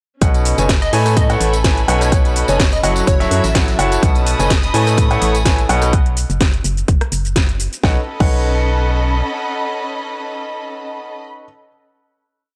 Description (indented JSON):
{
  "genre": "piano house",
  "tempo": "126 BPM",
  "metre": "4/4",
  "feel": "swing 54% on 16ths",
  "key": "B mixolydian",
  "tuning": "A4 = 439 Hz",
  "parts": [
    { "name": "clear baby grand piano", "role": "riff", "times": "0.2-11.4 s", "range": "B2 to G#5", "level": "-22 LUFS", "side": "equal", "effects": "sidechain pumping, analog delay" },
    { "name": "organ-like FM bass", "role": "bass", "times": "0.2-9.2 s", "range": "F#1 to A2", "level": "-20 LUFS", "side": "equal", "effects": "sidechain pumping" },
    { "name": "breakbeat sampler-style drum kit", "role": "drums", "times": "0.2-5.9 s", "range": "hi-hat, snare drum", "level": "-32 LUFS", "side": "equal", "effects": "none" },
    { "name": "electronic kick drum", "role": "drums", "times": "0.2-8.3 s", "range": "none", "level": "-17 LUFS", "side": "equal", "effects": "none" },
    { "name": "house drum kit", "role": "drums", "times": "0.2-8.3 s", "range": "crash cymbal, hi-hat, rim click, shaker, snare drum", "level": "-25 LUFS", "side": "equal", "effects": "none" },
    { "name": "tambourine", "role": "percussion", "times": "0.2-5.9 s", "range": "none", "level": "-33 LUFS", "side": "equal", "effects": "none" },
    { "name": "warm studio string section", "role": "texture", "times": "0.2-11.3 s", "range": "C#4 to B5", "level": "-27 LUFS", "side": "equal", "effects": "sidechain pumping" },
    { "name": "plucky unison lead", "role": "melody", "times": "0.8-3.4 s", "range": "C#5 to D#5", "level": "-25 LUFS", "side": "equal", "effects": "analog delay" },
    { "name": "rich studio violin section", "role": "sustained chords", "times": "4.0-5.9 s", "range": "D#6", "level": "-29 LUFS", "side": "equal", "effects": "sidechain pumping" }
  ],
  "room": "digital ambience",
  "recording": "dry, gritty hardware recording, transformer saturation, cassette tape",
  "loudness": "-16 LUFS",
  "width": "mono",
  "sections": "0.2-7.8 drop; 7.8-11.6 final chord",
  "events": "drop 0.2-7.8",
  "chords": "0.2 B9; 1.2 Amaj9; 1.9 B9; 3.1 F#m7; 4.0 B9; 5.0 Amaj9; 5.7 B9; 6.9 N.C.; 7.8 B9"
}